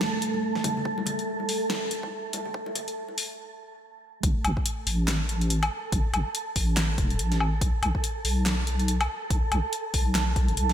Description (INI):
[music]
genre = deep dubstep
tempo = 142 BPM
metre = 4/4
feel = swing 58% on 16ths, half-time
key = unclear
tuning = A4 = 440 Hz
[part]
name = deep dark ambient pad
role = sustained chords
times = 0.0-4.3 s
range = A3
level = -33 LUFS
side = right 2 dB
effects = chorus, built-in reverb
[part]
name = deep house drum kit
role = drums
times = 0.0-10.7 s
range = handclaps, hi-hat, snare drum, woodblock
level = -30 LUFS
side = left 1 dB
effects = none
[part]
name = congas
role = percussion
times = 0.0-3.2 s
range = none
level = -35 LUFS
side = left 3 dB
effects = dub echo
[part]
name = wind-like tuned noise texture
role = texture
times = 0.0-10.7 s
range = A4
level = -34 LUFS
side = right 4 dB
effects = built-in reverb, analog chorus
[part]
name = electronic kick drum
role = drums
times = 0.6-10.5 s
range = none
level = -28 LUFS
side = equal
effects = high-pass filter on kick, high-pass filter on room
[part]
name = deep soft wobble bass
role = bass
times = 4.2-10.7 s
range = E1 to B1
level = -25 LUFS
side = equal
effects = chorus
[sound]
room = light reverb, digital ambience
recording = high-pass filter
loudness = -24 LUFS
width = side -10 dB against mid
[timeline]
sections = 0.0-4.2 A section; 4.2-10.7 B section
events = build-up 0.0-4.2; filter sweep 0.0-4.2; break 3.4-4.2; drop 4.2-10.7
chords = 0.0 N.C.; 4.2 A5; 7.6 B5